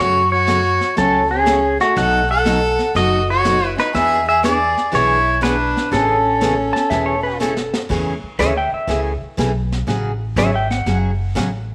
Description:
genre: country, western swing.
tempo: 121 BPM.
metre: 4/4.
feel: swing 68% on 8ths.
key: A major.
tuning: A4 = 439 Hz.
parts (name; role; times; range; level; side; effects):
pedal steel guitar; melody; 0.0-7.4 s; F#4 to F#5; -19 LUFS; equal; none.
clear fiddle; second line; 0.0-7.4 s; A3 to A4; -23 LUFS; equal; tape echo.
picked steel-string acoustic guitar; accompaniment; 0.0-11.5 s; B2 to G#4; -25 LUFS; equal; none.
upright bass; bass; 0.0-11.7 s; E1 to F#2; -26 LUFS; equal; none.
vintage brush drum kit; drums; 0.5-11.7 s; brushed snare drum, crash cymbal, hi-hat, kick drum, snare drum; -28 LUFS; equal; none.
clean lap steel guitar; second line; 6.7-11.0 s; A4 to A5; -24 LUFS; equal; none.
room: moderate echo chamber reverb, RT60 1.5 s, small room ambience.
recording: none.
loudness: -17 LUFS.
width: mono.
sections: 0.0-7.9 A section; 7.9-11.7 B section.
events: drum fill 7.4-7.9; electric slide guitar solo 7.9-11.7.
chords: 0.0 F#m; 2.0 B7; 3.9 E7; 5.9 Amaj7; 9.9 F#madd9.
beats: 0.48 0.97 1.47 | 1.96 2.46 2.95 3.45 | 3.94 4.44 4.93 5.43 | 5.92 6.42 6.91 7.40 | 7.90 8.39 8.89 9.38 | 9.88 10.37 10.86 11.36.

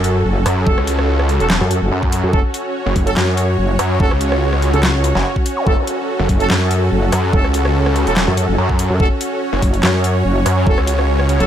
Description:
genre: heavy wobble dubstep.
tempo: 144 BPM.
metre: 4/4.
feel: swing 54% on 16ths, half-time.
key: F# minor.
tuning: A4 = 439 Hz.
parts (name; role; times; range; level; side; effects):
supersaw pad; sustained chords; 0.0-11.5 s; C#4 to C#5; -20 LUFS; right 1 dB; sidechain pumping.
metallic wobble bass; bass; 0.0-11.5 s; F#1 to F#2; -16 LUFS; equal; chorus, overdrive.
dubstep drum kit; drums; 0.0-11.5 s; handclaps, hi-hat, rim click, snare drum; -21 LUFS; equal; overdrive.
sub drop and zap; sound effects; 0.0-0.7, 5.6-5.7 s; none; -27 LUFS; equal; none.
snarling distorted saw bass; bass; 0.5-11.4 s; E1 to F#2; -17 LUFS; equal; distortion, overdrive.
bright brass ensemble; stabs; 0.7-11.5 s; C#4 to A4; -24 LUFS; right 3 dB; none.
electronic kick drum; drums; 0.7-10.8 s; none; -16 LUFS; equal; overdrive.
room: light reverb.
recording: none.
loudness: -13 LUFS.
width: side -10 dB against mid.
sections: 0.0-11.5 A section.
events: impact 0.0-0.7.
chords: 0.0 F#m.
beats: 0.25 | 0.67 1.08 1.50 1.92 | 2.33 2.75 3.17 3.58 | 4.00 4.42 4.83 5.25 | 5.67 6.08 6.50 6.92 | 7.33 7.75 8.17 8.58 | 9.00 9.42 9.83 10.25 | 10.67 11.08.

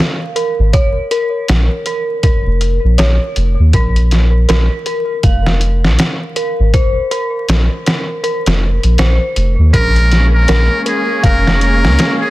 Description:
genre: trip hop.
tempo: 80 BPM.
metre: 4/4.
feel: swing 60% on 16ths.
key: Bb minor.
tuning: A4 = 440 Hz.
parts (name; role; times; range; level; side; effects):
dark detuned synth bell; arpeggios; 0.0-12.3 s; Bb4 to F5; -19 LUFS; equal; chorus, phaser, tape echo.
trip hop sampler-style drum kit; drums; 0.0-12.2 s; hi-hat, kick drum, snare drum; -15 LUFS; equal; none.
soft dub sub bass; bass; 0.6-12.0 s; F1 to Eb2; -11 LUFS; equal; none.
trumpet with metal mute; melody; 9.7-12.3 s; Ab4 to Bb4; -16 LUFS; equal; none.
bright studio string section; sustained chords; 9.7-12.3 s; Ab3 to Db4; -19 LUFS; equal; none.
room: digital ambience.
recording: dense, heavily limited modern master, vinyl crackle.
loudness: -11 LUFS.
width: side -18 dB against mid.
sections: 0.0-12.3 A section.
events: none.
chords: 0.0 Bbm; 3.7 F5; 9.7 Bbm7.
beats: | 0.74 1.49 2.24 2.99 | 3.74 4.49 5.24 5.99 | 6.74 7.49 8.24 8.99 | 9.74 10.49 11.24 11.99.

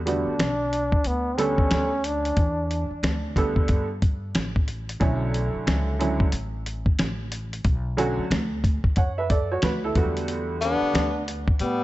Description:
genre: hip hop, jazz-hop.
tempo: 91 BPM.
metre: 4/4.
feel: swing 62% on 16ths.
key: unclear.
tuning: A4 = 437 Hz.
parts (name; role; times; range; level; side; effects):
upright bass; bass; 0.0-11.8 s; A1 to A2; -29 LUFS; equal; none.
warm trombone; melody; 0.1-3.0, 10.6-11.8 s; B3 to D4; -26 LUFS; equal; tape echo.
clear upright piano; accompaniment; 0.1-11.1 s; D3 to F#5; -26 LUFS; right 2 dB; none.
dusty soul sampler-style drum kit; drums; 0.1-11.8 s; hi-hat, kick drum, snare drum; -23 LUFS; equal; vintage 12-bit sampler grit.
breathy tenor saxophone; second line; 10.6-11.8 s; G3 to B3; -27 LUFS; left 5 dB; none.
room: light reverb, studio reverb.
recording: dark, warm production, nothing above 7.9 kHz.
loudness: -22 LUFS.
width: side -16 dB against mid.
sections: 0.0-11.8 A section.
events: none.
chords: 0.0 Em11; 5.0 Bm11; 10.0 Em11.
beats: 0.39 1.05 1.71 | 2.37 3.03 3.69 4.35 | 5.01 5.67 6.33 6.99 | 7.65 8.30 8.96 9.62 | 10.28 10.94 11.60.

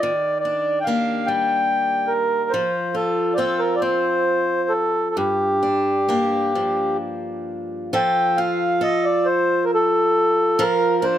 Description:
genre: celtic folk.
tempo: 43-49 BPM (dotted quarters).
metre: 6/8.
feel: rubato.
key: unclear.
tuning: A4 = 440 Hz.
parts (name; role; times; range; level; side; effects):
mellow accordion; melody; 0.0-11.2 s; G4 to G5; -19 LUFS; equal; none.
picked swing-style acoustic guitar; accompaniment; 0.0-11.2 s; G2 to Bb4; -23 LUFS; left 1 dB; none.
room: light reverb.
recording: close, detailed microphones.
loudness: -18 LUFS.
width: side -11 dB against mid.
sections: 0.0-7.9 A section; 7.9-11.2 B section.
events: none.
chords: 0.0 Ebmaj7; 2.5 F; 5.2 Gm7; 7.9 F; 10.6 Bb/F.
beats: | 0.01 1.28 | 2.53 3.82 | 5.16 6.55 | 7.92 9.26 | 10.59.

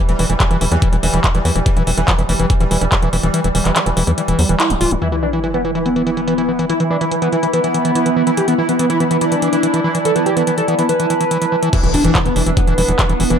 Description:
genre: psychedelic trance.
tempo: 143 BPM.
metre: 4/4.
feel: straight.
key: E minor.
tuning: A4 = 439 Hz.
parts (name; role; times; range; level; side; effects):
pulsing gated texture; sustained chords; 0.0-13.4 s; E3 to E4; -22 LUFS; right 2 dB; chorus, built-in reverb, sidechain pumping.
overdriven acid bass; riff; 0.0-13.4 s; E3 to F4; -20 LUFS; equal; distortion, auto-pan, cassette tape, sidechain pumping, dub echo.
tight sequencer bass; bass; 0.1-5.0, 11.8-13.4 s; D1 to E2; -18 LUFS; equal; none.
drum and bass drum kit; drums; 0.1-13.4 s; crash cymbal, handclaps, hi-hat; -21 LUFS; equal; low-pass filter on hats, low-pass filter on snare, low-pass filter on cymbals, low-pass filter on room.
electronic kick drum; drums; 0.4-3.0, 11.7-13.1 s; none; -16 LUFS; equal; none.
overdriven synth lead; melody; 5.0-13.3 s; E3 to B4; -18 LUFS; equal; distortion, phaser, sidechain pumping, dub echo.
sub drop and impact; sound effects; 5.0-6.7, 11.7-13.4 s; none; -25 LUFS; equal; none.
warbly tape-like pad; texture; 5.0-13.4 s; B3 to B5; -23 LUFS; right 1 dB; chorus, built-in reverb, sidechain pumping.
room: light reverb.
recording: none.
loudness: -13 LUFS.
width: side -8 dB against mid.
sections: 0.0-5.0 A section; 5.0-11.7 B section; 11.7-13.4 C section.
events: kick drops out 3.3-5.0; band accent 4.6; impact 5.0-6.7, 11.7-13.4; drop 11.7-13.4.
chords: 0.0 Dsus4 (rootless); 5.0 E5.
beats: 0.40 0.82 1.24 | 1.66 2.08 2.50 2.92 | 3.34 3.76 4.18 4.60 | 5.02 5.44 5.86 6.28 | 6.70 7.12 7.54 7.95 | 8.37 8.79 9.21 9.63 | 10.05 10.47 10.89 11.31 | 11.73 12.15 12.57 12.99.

